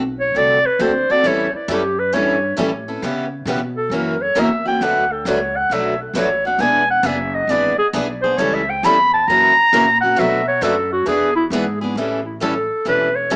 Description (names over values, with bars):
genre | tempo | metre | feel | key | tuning
acoustic string swing (jazz manouche) | 134 BPM | 4/4 | swing 65% on 8ths | A mixolydian | A4 = 441 Hz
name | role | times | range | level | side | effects
upright bass | bass | 0.0-13.4 s | E1 to C#3 | -28 LUFS | equal | none
breathy clarinet | melody | 0.2-13.4 s | E4 to B5 | -16 LUFS | equal | analog delay
picked steel-string acoustic guitar | accompaniment | 0.3-13.4 s | B2 to A4 | -21 LUFS | equal | none
picked swing-style acoustic guitar | accompaniment | 1.2-13.4 s | B2 to B4 | -25 LUFS | equal | none
room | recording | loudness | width
moderate club reverb, RT60 0.6 s | small speaker sound | -14 LUFS | side -32 dB against mid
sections
0.0-12.0 A section; 12.0-13.4 B section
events
clarinet solo 0.0-12.0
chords
0.0 D7; 1.2 A7; 3.0 C#m7b5; 3.9 F#7; 4.8 Bm7; 6.6 E7; 8.4 A7; 9.3 F#7; 10.2 Bm7; 11.1 E7; 12.0 A7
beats
0.34 0.79 | 1.24 1.68 2.13 2.58 | 3.02 3.47 3.92 4.36 | 4.81 5.26 5.70 6.15 | 6.60 7.04 7.49 7.94 | 8.38 8.83 9.28 9.72 | 10.17 10.62 11.06 11.51 | 11.96 12.41 12.86 13.30